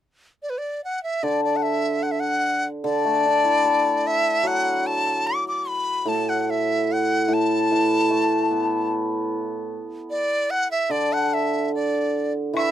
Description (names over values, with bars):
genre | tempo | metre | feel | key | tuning
chinese traditional, Chinese chamber ensemble | 74 BPM | 2/4 | rubato | D gong mode | A4 = 440 Hz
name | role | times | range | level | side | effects
breathy dizi | melody | 0.4-12.7 s | B4 to D6 | -23 LUFS | right 1 dB | none
hammered dulcimer | accompaniment | 1.2-12.7 s | A2 to A4 | -22 LUFS | left 1 dB | none
woodblock | percussion | 12.6-12.7 s | none | -27 LUFS | left 3 dB | none
room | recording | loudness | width
light reverb | none | -20 LUFS | side -11 dB against mid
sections
0.0-12.6 A section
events
none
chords
none